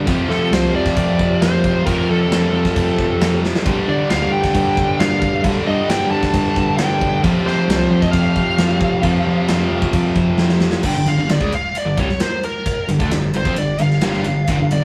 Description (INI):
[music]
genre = hard rock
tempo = 134 BPM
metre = 4/4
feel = straight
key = unclear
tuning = A4 = 440 Hz
[part]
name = phased analog pad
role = sustained chords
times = 0.7-10.8 s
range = F3 to A4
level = -35 LUFS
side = equal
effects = none
[part]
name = biting overdriven guitar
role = riff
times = 0.0-14.8 s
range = F2 to C4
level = -23 LUFS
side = equal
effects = none
[part]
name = tight distorted guitar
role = riff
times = 0.0-14.8 s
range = F2 to C4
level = -25 LUFS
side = equal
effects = distortion
[part]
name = bell-like tine electric piano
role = bass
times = 0.1-14.8 s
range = G1 to D3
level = -24 LUFS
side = equal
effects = none
[part]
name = tight metal drum kit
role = drums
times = 0.1-14.8 s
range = crash cymbal, kick drum, ride cymbal, snare drum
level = -24 LUFS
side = equal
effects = none
[part]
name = bluesy overdriven lead guitar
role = melody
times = 0.3-14.8 s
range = A4 to A5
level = -24 LUFS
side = equal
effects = distortion
[sound]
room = moderate studio reverb, RT60 0.6 s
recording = rough rehearsal-room recording, tube saturation, vinyl crackle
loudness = -17 LUFS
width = mono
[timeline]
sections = 0.0-10.8 A section; 10.8-14.8 B section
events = drum fill 3.4, 10.4-10.8; lead electric guitar solo 10.8-14.8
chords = 0.1 F; 3.7 G5; 7.2 F5; 10.8 G5